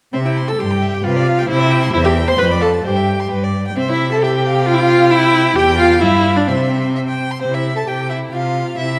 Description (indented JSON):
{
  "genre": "quick classical-period movement for string quartet",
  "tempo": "132 BPM",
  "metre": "2/4",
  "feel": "straight",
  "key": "C major",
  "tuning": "A4 = 440 Hz",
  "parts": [
    { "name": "clear violin", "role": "melody", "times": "0.1-9.0 s", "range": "B4 to E6", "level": "-25 LUFS", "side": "equal", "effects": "none" },
    { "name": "rich violin", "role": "second line", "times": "0.1-9.0 s", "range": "C4 to C6", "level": "-26 LUFS", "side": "equal", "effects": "none" },
    { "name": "warm viola", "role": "accompaniment", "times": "0.1-9.0 s", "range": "C4 to C5", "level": "-18 LUFS", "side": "equal", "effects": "none" },
    { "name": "rich cello", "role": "bass", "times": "0.1-9.0 s", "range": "E2 to C3", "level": "-21 LUFS", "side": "equal", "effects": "none" }
  ],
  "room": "moderate scoring stage reverb, RT60 1.6 s",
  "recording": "none",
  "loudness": "-15 LUFS",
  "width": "mono",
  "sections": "0.1-7.4 A section; 7.4-9.0 A section",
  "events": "none",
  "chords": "0.1 C; 1.0 G7/C; 1.5 C; 1.9 C/E; 2.4 Dm7/F; 2.9 C/G; 3.8 C; 5.6 Em; 6.0 Em7/G; 6.5 C; 7.4 Csus4"
}